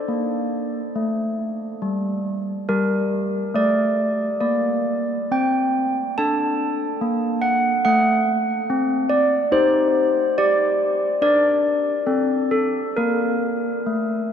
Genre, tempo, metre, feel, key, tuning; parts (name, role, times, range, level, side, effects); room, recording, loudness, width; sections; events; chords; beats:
classical, tune for handbells; 70 BPM; 4/4; uneven beats; A4 = 440 Hz
handbells; solo; 0.0-14.3 s; G3 to A5; -18 LUFS; equal
wet cathedral reverb, RT60 6.5 s; dark, warm production; -18 LUFS; side -8 dB against mid
0.0-14.3 A section
0.0 D5; 2.7 Gm; 6.2 D; 9.5 Cm/Eb; 11.2 Bb/D; 12.1 D5/C; 13.0 N.C.
0.08 0.96 1.83 | 2.70 3.56 4.43 5.32 | 6.17 7.02 7.86 8.70 | 9.54 10.38 11.22 12.09 | 12.98 13.87